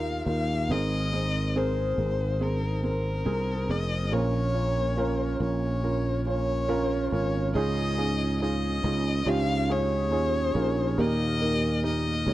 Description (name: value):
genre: pop ballad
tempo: 70 BPM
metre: 4/4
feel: straight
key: unclear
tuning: A4 = 440 Hz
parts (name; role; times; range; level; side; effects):
- warm violin; melody; 0.0-12.3 s; Bb4 to F5; -31 LUFS; left 3 dB; slapback echo
- felt-muted upright piano; accompaniment; 0.0-12.3 s; Ab2 to Db5; -28 LUFS; right 2 dB; none
- sustaining fretless electric bass; bass; 0.0-12.3 s; F1 to Eb2; -28 LUFS; equal; none
room: little or no reverb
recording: dry, close 1970s-style studio recording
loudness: -24 LUFS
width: side -15 dB against mid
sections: 0.0-7.6 A section; 7.6-12.3 B section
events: none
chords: 0.0 Ebadd9; 0.7 Abadd9; 4.1 Bbm; 7.6 Dbadd9; 11.0 Eb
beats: | 0.70 1.55 2.41 3.27 | 4.12 4.98 5.84 6.70 | 7.55 8.41 9.27 10.12 | 10.98 11.84